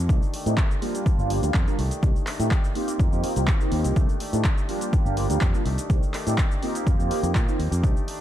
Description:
filtered disco house; 124 BPM; 4/4; straight; C dorian; A4 = 440 Hz
direct-recorded clean electric guitar; riff; 0.0-8.2 s; Eb3 to G4; -35 LUFS; left 1 dB; analog chorus, sidechain pumping, low-pass filter
modern bright fingered electric bass; bass; 0.0-7.9 s; G1 to Bb2; -26 LUFS; equal; sidechain pumping, low-pass filter
mellow synth brass; accompaniment; 0.1-7.9 s; G3 to Bb4; -29 LUFS; right 1 dB; chorus, phaser, sidechain pumping, low-pass filter
electronic kick drum; drums; 0.1-7.9 s; -22 LUFS; equal; overdrive, small room ambience
punchy analog drum machine; drums; 0.1-8.2 s; handclaps, hi-hat, shaker; -33 LUFS; equal; overdrive, small room ambience, sidechain pumping on hats, sidechain pumping on cymbals, sidechain pumping on perc
digital ambience; dark, warm production; -21 LUFS; side -12 dB against mid
0.0-8.2 A section
filter sweep 0.0-8.2
0.1 Cm69; 0.8 Gm7; 1.8 Cm69; 2.8 F9sus4; 4.0 Cm69; 4.7 Gm7; 5.7 Cm69; 6.6 F9sus4

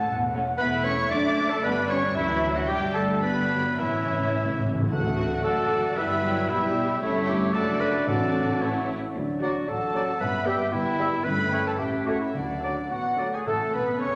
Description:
quick classical-period movement for symphony orchestra; 113 BPM; 2/4; rubato; D major; A4 = 437 Hz
warm symphonic violin section; melody; 0.0-14.2 s; A4 to D6; -38 LUFS; equal
bright clarinet; second line; 0.0-14.2 s; D4 to D5; -32 LUFS; equal
mellow hollow concert flute; second line; 0.0-14.2 s; A4 to B5; -34 LUFS; equal
rich studio violin section; second line; 0.0-14.2 s; D5 to D6; -39 LUFS; equal
warm oboe; second line; 0.0-13.3 s; E4 to F#5; -35 LUFS; equal
mellow French horn section; sustained chords; 0.0-14.2 s; E3 to F#4; -34 LUFS; equal
rich chamber double bass section; bass; 0.1-14.2 s; E1 to D2; -37 LUFS; equal
warm symphonic cello section; bass; 0.1-14.2 s; D2 to D3; -38 LUFS; equal
rich chamber viola section; accompaniment; 0.3-14.2 s; E3 to A4; -36 LUFS; equal
timpani; percussion; 3.8-5.7, 8.1-8.6, 12.3-14.2 s; A2 to D3; -33 LUFS; equal
dark bassoon; accompaniment; 4.9-14.2 s; E3 to C#4; -36 LUFS; equal
clear trumpet; stabs; 12.9-14.2 s; F#4 to C#5; -30 LUFS; equal
wet scoring stage reverb, RT60 1.7 s; -25 LUFS; mono
0.0-4.9 A section; 4.9-13.5 B section
timpani fill 3.8-4.9
0.0 A; 0.6 A/E; 1.1 D/F#; 1.6 G; 2.2 D; 2.7 G; 3.8 A; 4.9 D; 6.0 Em/G; 7.0 A7/G; 7.5 D/F#; 8.1 D/A; 8.6 A; 9.2 D; 10.2 Em/G; 11.3 A7/G; 11.8 A7; 12.3 D; 13.5 A

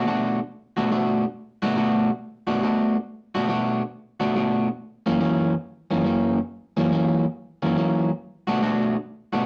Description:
blues; 140 BPM; 4/4; swing 66% on 8ths; B minor; A4 = 440 Hz
electric guitar at the edge of break-up; solo; 0.0-9.5 s; F#2 to F#4; -23 LUFS; equal
moderate small room reverb, RT60 0.6 s; rough rehearsal-room recording; -24 LUFS; mono
0.0-9.5 A section
0.0 Bm7; 4.8 F#7; 8.2 Bm7

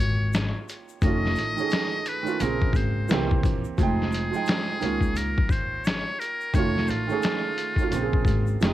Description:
lo-fi hip hop; 87 BPM; 4/4; swing 61% on 16ths; F minor; A4 = 444 Hz
trumpet with metal mute; melody; 0.0-8.7 s; F4 to Eb5; -30 LUFS; left 1 dB; low-pass filter, cassette tape
warm upright piano; accompaniment; 0.0-8.7 s; Db3 to G5; -29 LUFS; right 8 dB; low-pass filter, cassette tape
upright bass; bass; 0.0-8.7 s; F1 to Db2; -27 LUFS; left 1 dB
trip hop sampler-style drum kit; drums; 0.0-8.7 s; finger snaps, hi-hat, kick drum, snare drum; -25 LUFS; left 1 dB; vintage 12-bit sampler grit
tube shaker; percussion; 0.3-8.7 s; -51 LUFS; left 11 dB
studio ambience; home recording on cassette; -22 LUFS; side -14 dB against mid
0.0-8.7 A section
0.0 Db69; 1.0 F7alt; 2.4 Bbm9; 3.1 C7; 3.8 Fm9; 4.8 Db69; 6.5 F7alt; 7.9 Bbm9

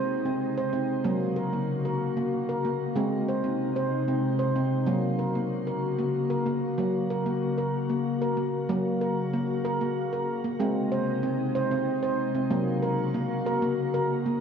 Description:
world meditative, meditative tuned percussion; 63 BPM (dotted quarters); 6/8; straight; Gb lydian; A4 = 444 Hz
glassy FM pad; sustained chords; 0.0-14.4 s; C3 to Gb4; -29 LUFS; left 3 dB; ensemble chorus, built-in reverb, shimmer reverb
handpan; arpeggios; 0.0-14.4 s; Gb3 to C5; -27 LUFS; right 2 dB; shimmer reverb
wet concert hall reverb, RT60 2.1 s; dark, warm production; -25 LUFS; side -7 dB against mid
0.0-8.7 A section; 8.7-14.4 B section
0.0 Ab; 1.1 Gb; 3.0 Ab; 4.9 Gb; 10.6 Ab; 12.5 Gb

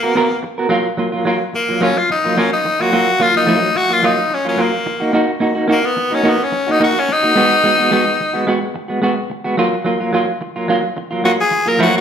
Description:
disco; 108 BPM; 4/4; straight; F# major; A4 = 440 Hz
raspy tenor saxophone; melody; 0.0-12.0 s; A#3 to A#4; -15 LUFS; left 2 dB
semi-hollow electric guitar; accompaniment; 0.0-12.0 s; F#3 to A#4; -16 LUFS; right 1 dB; tremolo
wet large studio reverb, RT60 1.1 s; band playing live in one room; -13 LUFS; side -8 dB against mid
0.7-12.0 A section
tenor saxophone solo 0.7-12.0
0.0 Bmaj7(no3)/A#; 0.7 F#maj7; 4.9 Bmaj9/A# (rootless); 7.4 G#m7; 9.6 F#maj7

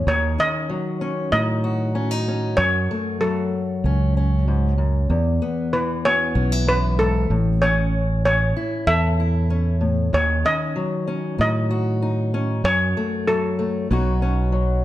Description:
folk; 95 BPM; 4/4; straight; A4 = 442 Hz
fingerpicked old ladder-braced acoustic guitar; accompaniment; 0.0-14.8 s; E2 to A4; -24 LUFS; left 2 dB
fingered electric bass; bass; 0.0-14.8 s; A1 to A2; -20 LUFS; right 1 dB
steel pan; melody; 0.1-14.5 s; A4 to E5; -22 LUFS; equal
light reverb; -18 LUFS; side -14 dB against mid
0.0-14.8 A section
0.1 D#m7b5; 2.6 F#m; 5.1 Esus2; 7.3 A; 10.1 D#m7b5; 12.6 F#m; 13.9 Badd9

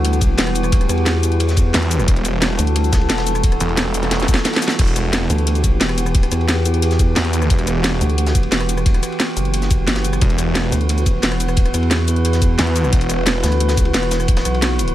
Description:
dark technical drum and bass; 177 BPM; 4/4; straight; E minor; A4 = 441 Hz
metallic inharmonic drone; sustained chords; 0.0-14.9 s; E3 to B4; -23 LUFS; right 1 dB; chorus, built-in reverb, sidechain pumping
vowel-sweep wobble bass; bass; 0.0-14.9 s; E1 to E2; -18 LUFS; equal; chorus
crunchy breakbeat drum kit; drums; 0.0-14.9 s; ride cymbal, snare drum; -31 LUFS; equal; high-pass filter on cymbals, high-pass filter on snare, high-pass filter on room
drum and bass drum kit; drums; 0.0-14.9 s; cabasa, crash cymbal, hi-hat, rim click, snare drum; -20 LUFS; equal
warbly tape-like pad; texture; 0.0-4.8 s; G3 to F#5; -29 LUFS; right 2 dB; chorus, built-in reverb, sidechain pumping
electronic kick drum; drums; 0.2-14.3 s; -16 LUFS; equal
snarling distorted saw bass; bass; 1.7-8.0, 10.2-13.4 s; E1 to E2; -19 LUFS; equal; distortion, overdrive
little or no reverb; -14 LUFS; side -13 dB against mid
0.0-4.8 A section; 4.8-14.9 A section
drop 0.0-4.8, 4.8-14.9; drum fill 4.1-4.8
0.0 Emadd9

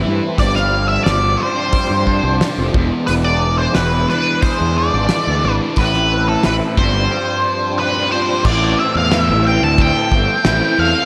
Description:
psychedelic rock; 89 BPM; 4/4; straight; A minor; A4 = 440 Hz
overdriven tonewheel organ; sustained chords; 0.0-11.1 s; E3 to E4; -27 LUFS; equal; slow rotary speaker, chorus vibrato
fuzz guitar; riff; 0.0-11.1 s; E2 to A4; -23 LUFS; equal; distortion, phaser
fuzz fingered electric bass; bass; 0.0-10.9 s; E1 to G2; -21 LUFS; equal; overdrive
octave-fuzz lead guitar; melody; 0.4-11.1 s; A4 to A5; -20 LUFS; equal; wah, distortion, digital delay
cloth-damped thuddy drum kit; drums; 0.4-10.6 s; crash cymbal, hi-hat, kick drum, snare drum; -22 LUFS; equal
moderate lush hall reverb, RT60 2.1 s; dreamy mix soaked in reverb; -16 LUFS; mono
0.0-8.4 A section; 8.4-11.1 B section
break 7.1-8.4
0.4 G7sus4; 2.7 E7; 5.8 Am; 6.8 G7sus4; 8.4 Am

